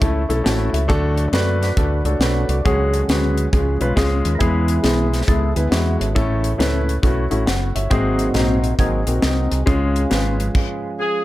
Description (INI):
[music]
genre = uptempo gospel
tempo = 137 BPM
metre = 4/4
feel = swing 65% on 8ths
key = unclear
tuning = A4 = 440 Hz
[part]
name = warm grand piano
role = accompaniment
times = 0.0-10.5 s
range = G#2 to A5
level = -21 LUFS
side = left 2 dB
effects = dub echo
[part]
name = percussive tonewheel organ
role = sustained chords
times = 0.0-11.2 s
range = E3 to D5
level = -26 LUFS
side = right 2 dB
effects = slow rotary speaker, chorus vibrato
[part]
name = fingered electric bass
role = bass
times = 0.0-10.5 s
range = F#1 to F#2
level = -20 LUFS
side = equal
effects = none
[part]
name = crisp fusion drum kit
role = drums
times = 0.0-10.7 s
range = crash cymbal, hi-hat, kick drum, snare drum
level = -22 LUFS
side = equal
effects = dub echo
[part]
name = clear saxophone section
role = melody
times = 11.0-11.2 s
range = G#4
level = -18 LUFS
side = equal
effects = none
[sound]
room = light reverb, small room ambience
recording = echo-heavy mix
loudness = -16 LUFS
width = side -16 dB against mid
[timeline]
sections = 0.0-11.2 A section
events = tonewheel organ solo 0.0-11.2; grand piano fill 0.2-0.9; stop 10.5-11.2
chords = 0.0 A; 0.9 D; 2.6 C#sus4; 3.5 C#; 4.4 E; 6.2 A; 7.9 G#7; 9.7 C#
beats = 0.02 0.46 | 0.90 1.33 1.77 2.21 | 2.65 3.09 3.52 3.96 | 4.40 4.84 5.28 5.72 | 6.16 6.60 7.04 7.47 | 7.91 8.35 8.79 9.23 | 9.67 10.11 10.55 10.98